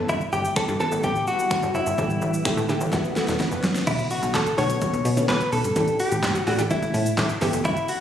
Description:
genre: dance-pop.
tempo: 127 BPM.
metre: 4/4.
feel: straight.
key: B minor.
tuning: A4 = 440 Hz.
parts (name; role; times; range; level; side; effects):
analog pluck; accompaniment; 0.0-8.0 s; D3 to A4; -28 LUFS; equal; chorus, sidechain pumping.
shimmering ambient pad; sustained chords; 0.0-3.9 s; E3 to F#4; -34 LUFS; equal; none.
plucky analog bass; bass; 0.0-7.8 s; E1 to B2; -27 LUFS; equal; sidechain pumping.
direct-recorded clean electric guitar; melody; 0.1-8.0 s; E4 to C#5; -25 LUFS; left 1 dB; digital delay.
deep house drum kit; drums; 0.1-8.0 s; crash cymbal, finger snaps, handclaps, hi-hat, kick drum, shaker, snare drum; -28 LUFS; equal; overdrive.
swell and impact; sound effects; 2.4-5.8 s; none; -34 LUFS; right 1 dB; none.
room: light reverb.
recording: recorded on a phone in the room, studio reverb.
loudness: -21 LUFS.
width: side -9 dB against mid.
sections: 0.0-3.9 A section; 3.9-8.0 B section.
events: swell 2.4-3.9; drum fill 2.9-3.9; impact 3.9-5.8.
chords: 0.0 G69; 2.0 A7sus4; 2.9 F#m7; 3.9 Bm7; 5.8 A7sus4; 7.4 G69.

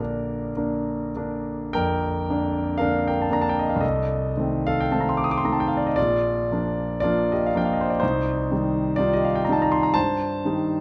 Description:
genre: classical, romantic nocturne for solo piano.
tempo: 47-63 BPM.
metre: 4/4.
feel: rubato.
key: Bb major.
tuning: A4 = 440 Hz.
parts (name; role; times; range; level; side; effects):
warm concert grand piano; solo; 0.0-10.8 s; Bb1 to Eb6; -24 LUFS; equal; none.
room: moderate recital hall reverb, RT60 1.7 s.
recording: close, detailed microphones.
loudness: -23 LUFS.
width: mono.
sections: 0.0-10.8 A section.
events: none.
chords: 0.0 Bb; 3.8 Adim/C; 6.0 Bb; 8.0 Cm.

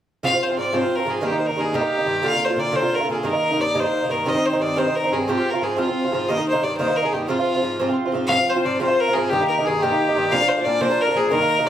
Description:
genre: celtic folk, Celtic jig.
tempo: 119 BPM (dotted quarters).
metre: 6/8.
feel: straight.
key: F dorian.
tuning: A4 = 440 Hz.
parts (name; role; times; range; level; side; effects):
clear fiddle; melody; 0.2-11.7 s; F4 to F5; -22 LUFS; left 1 dB; none.
Irish bouzouki; accompaniment; 0.2-11.7 s; G2 to F4; -21 LUFS; right 2 dB; none.
accordion; second line; 8.3-11.7 s; G4 to F5; -23 LUFS; left 4 dB; none.
room: wet studio reverb, RT60 0.5 s.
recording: heard from further back in the room.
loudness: -18 LUFS.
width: side -10 dB against mid.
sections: 0.2-8.3 A section; 8.3-11.7 A section.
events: none.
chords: 0.2 Fm; 1.2 Eb; 2.2 Bb; 3.3 Eb; 4.3 Cm; 5.3 Fm; 6.3 Eb; 7.3 Fm; 9.3 Eb/G; 10.3 Bb.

